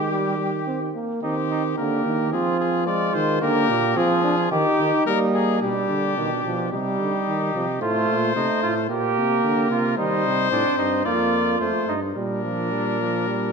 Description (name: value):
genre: classical, imitative canzona for brass ensemble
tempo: 109 BPM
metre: 4/4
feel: straight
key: Eb major, Bb major from 10.0 s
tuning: A4 = 438 Hz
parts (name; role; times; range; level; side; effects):
- clear trumpet; melody; 0.0-13.5 s; G4 to D5; -26 LUFS; left 10 dB; none
- warm flugelhorn; second line; 0.0-13.5 s; D4 to G4; -26 LUFS; right 4 dB; none
- warm trombone; accompaniment; 0.0-13.5 s; Eb3 to Eb4; -25 LUFS; right 2 dB; none
- mellow bass trombone; bass; 0.0-13.5 s; F2 to G3; -26 LUFS; right 2 dB; none
room: wet scoring stage reverb, RT60 1.8 s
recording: minimal, uncompressed stereo recording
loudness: -20 LUFS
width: side -5 dB against mid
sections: 0.0-1.2 A section; 1.2-5.6 B section; 5.6-13.5 A section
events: none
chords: 0.0 Eb; 2.3 Fm; 3.4 Bb; 4.5 Eb; 5.6 G/B; 6.7 Cm; 7.8 F/A; 8.9 Bb; 10.0 Cm; 11.0 Bb/F; 11.6 F; 12.2 Bb